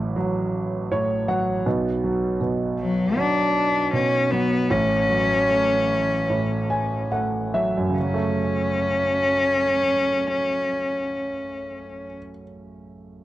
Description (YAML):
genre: pop ballad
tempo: 70-80 BPM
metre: 4/4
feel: straight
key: F# minor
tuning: A4 = 439 Hz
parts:
  - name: warm concert grand piano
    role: accompaniment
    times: 0.0-13.2 s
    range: A1 to G#5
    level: -24 LUFS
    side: right 2 dB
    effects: cassette tape
  - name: warm cello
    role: melody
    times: 2.8-12.1 s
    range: F#3 to D4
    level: -22 LUFS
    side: left 2 dB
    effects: cassette tape
room: light reverb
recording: home recording on cassette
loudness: -20 LUFS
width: side -14 dB against mid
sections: 0.0-8.0 A section; 8.0-11.4 B section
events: grand piano fill 0.5-1.7, 6.3-8.0; slowing down 1.7-8.0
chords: 0.0 F#m/A; 1.7 Bm; 4.7 F#m/A; 8.0 F#m